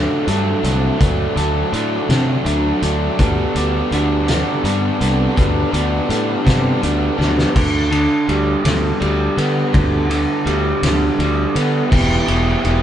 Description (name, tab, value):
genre	indie rock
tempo	55 BPM (dotted quarters)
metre	6/8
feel	straight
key	unclear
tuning	A4 = 440 Hz
part	overdriven electric guitar	riff	0.0-12.8 s	D3 to G4	-18 LUFS	right 1 dB	none
part	fuzz fingered electric bass	bass	0.0-12.8 s	E1 to D3	-20 LUFS	equal	overdrive
part	loose indie drum kit	drums	0.3-12.8 s	crash cymbal, hi-hat, kick drum, ride cymbal, snare drum	-20 LUFS	equal	none
room	light reverb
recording	band playing live in one room, nothing above 10.9 kHz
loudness	-14 LUFS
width	side -10 dB against mid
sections	0.0-7.6 A section; 7.6-11.9 B section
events	drum fill 7.2-7.6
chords	0.0 D; 3.2 G; 7.6 G/D; 11.9 Em